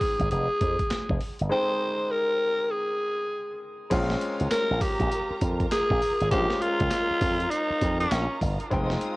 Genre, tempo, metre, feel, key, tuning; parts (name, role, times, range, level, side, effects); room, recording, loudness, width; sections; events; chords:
R&B, new jack swing; 100 BPM; 4/4; swing 62% on 16ths; Bb dorian; A4 = 440 Hz
raspy tenor saxophone; melody; 0.0-8.4 s; Db4 to C5; -26 LUFS; equal
warm grand piano; accompaniment; 0.0-9.2 s; Ab3 to G5; -33 LUFS; left 2 dB; cassette tape
breakbeat sampler-style drum kit; drums; 0.0-9.2 s; crash cymbal, handclaps, hi-hat, kick drum, snare drum, tambourine; -30 LUFS; equal; cassette tape
slap bass with an envelope filter; bass; 0.2-8.9 s; F1 to F2; -28 LUFS; equal
warm studio string section; sustained chords; 3.9-9.2 s; F4 to Eb6; -36 LUFS; right 1 dB; cassette tape
light reverb, small room ambience; home recording on cassette; -23 LUFS; side -22 dB against mid
0.0-3.9 A section; 3.9-9.2 B section
0.0 Fm7 (rootless); 3.9 Bbm7